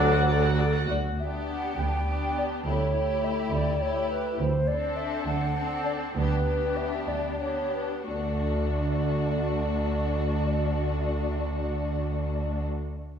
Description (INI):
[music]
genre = quick classical-period movement for symphony orchestra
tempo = 60-70 BPM (dotted quarters)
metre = 6/8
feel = rubato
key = D major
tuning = A4 = 439 Hz
[part]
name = mellow clarinet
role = second line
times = 0.0-0.6 s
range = A4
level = -39 LUFS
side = left 2 dB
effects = none
[part]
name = warm oboe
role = second line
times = 0.0-0.6 s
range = F#5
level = -30 LUFS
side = left 2 dB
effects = none
[part]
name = clear bassoon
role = accompaniment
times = 0.0-0.6 s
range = F#3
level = -33 LUFS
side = left 3 dB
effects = none
[part]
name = clear chamber viola section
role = accompaniment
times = 0.0-12.6 s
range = A3 to F#5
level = -33 LUFS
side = left 2 dB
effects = none
[part]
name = bright chamber double bass section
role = bass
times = 0.0-12.6 s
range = D2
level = -28 LUFS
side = right 2 dB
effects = none
[part]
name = mellow hollow concert flute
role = second line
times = 0.9-12.6 s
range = B4 to G5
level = -31 LUFS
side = left 1 dB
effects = none
[part]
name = rich chamber cello section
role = bass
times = 0.9-12.6 s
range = D2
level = -38 LUFS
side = right 2 dB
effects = none
[part]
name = rich chamber violin section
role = melody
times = 1.2-12.6 s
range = F#4 to A4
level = -37 LUFS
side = left 4 dB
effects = none
[part]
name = dark studio violin section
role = second line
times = 1.2-12.6 s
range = D4 to E4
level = -36 LUFS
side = left 2 dB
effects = none
[sound]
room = wet recital hall reverb, RT60 1.4 s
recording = recorded in a church or concert hall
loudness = -25 LUFS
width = side -8 dB against mid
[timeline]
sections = 0.9-8.1 A section; 8.1-11.9 B section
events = slowing down 3.5-8.1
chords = 0.0 D; 0.9 G/D; 2.7 A7/D; 4.4 D7; 6.2 G/D; 8.1 D